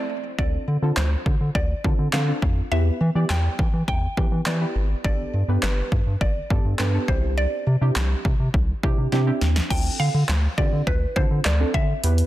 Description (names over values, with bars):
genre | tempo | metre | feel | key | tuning
dance-pop | 103 BPM | 4/4 | straight | D dorian | A4 = 441 Hz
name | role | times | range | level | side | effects
mallet-like synth pluck | melody | 0.0-12.3 s | B4 to G5 | -30 LUFS | right 1 dB | chorus, tape echo
deep mellow chord stab | accompaniment | 0.0-12.3 s | A3 to D5 | -30 LUFS | right 2 dB | chorus, sidechain pumping
round analog bass | bass | 0.4-12.2 s | G1 to E3 | -22 LUFS | equal | sidechain pumping
punchy analog drum machine | drums | 0.4-12.3 s | crash cymbal, handclaps, hi-hat, kick drum, snare drum | -24 LUFS | equal | overdrive
room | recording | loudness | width
light reverb | dense, heavily limited modern master | -20 LUFS | side -15 dB against mid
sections
0.0-9.7 A section; 9.7-12.3 B section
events
drum fill 9.1-9.7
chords
0.4 Dm7; 2.7 Em; 5.0 Gadd9; 7.1 Cadd9; 9.7 Dm7